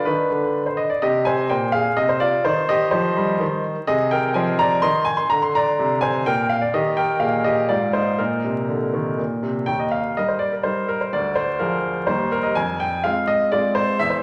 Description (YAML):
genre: classical-period piano sonatina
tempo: 125 BPM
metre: 3/4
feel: straight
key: C minor, Eb major from 3.9 s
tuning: A4 = 440 Hz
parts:
  - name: clear baby grand piano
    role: solo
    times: 0.0-14.2 s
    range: D2 to C6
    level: -21 LUFS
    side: equal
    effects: none
room: wet recital hall reverb, RT60 1.7 s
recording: vinyl crackle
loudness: -21 LUFS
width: mono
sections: 0.0-9.7 A section; 9.7-14.2 B section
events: none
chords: 0.0 D5; 1.0 C5; 2.5 Cm/Eb; 3.9 Ab/C; 5.3 Bb; 6.7 Eb; 7.7 Fm/Ab; 8.2 Eb5/Bb; 9.2 Bbsus2; 9.7 Eb; 11.1 Bb7/D; 12.1 Eb; 12.6 Fm